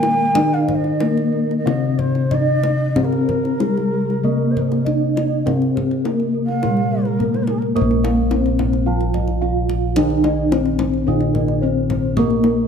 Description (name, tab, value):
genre	Javanese gamelan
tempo	92-109 BPM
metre	4/4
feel	straight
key	Bb slendro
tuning	A4 = 439 Hz
part	gamelan-type bronze metallophone	melody	0.0-12.7 s	Ab3-45c to F4+25c	-20 LUFS	left 2 dB	none
part	mellow bansuri	second line	0.0-7.7 s	Ab4-44c to G5+49c	-24 LUFS	right 1 dB	none
part	gamelan-type bronze metallophone	accompaniment	0.0-12.7 s	C3+30c to Bb3	-24 LUFS	right 3 dB	none
part	gamelan-type bossed gongs	arpeggios	0.0-12.7 s	Ab4-45c to F5+25c	-30 LUFS	left 6 dB	none
part	gamelan-type bronze metallophone	arpeggios	0.0-12.7 s	Ab4-45c to F5+25c	-28 LUFS	right 4 dB	none
part	gamelan-type bossed gongs	bass	0.0-12.7 s	Bb1 to Bb4	-22 LUFS	left 2 dB	none
part	kendang	percussion	0.0-12.6 s	none	-28 LUFS	left 2 dB	none
room	light reverb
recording	close, detailed microphones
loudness	-16 LUFS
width	side -7 dB against mid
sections	0.0-7.8 A section; 7.8-12.7 B section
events	none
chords	none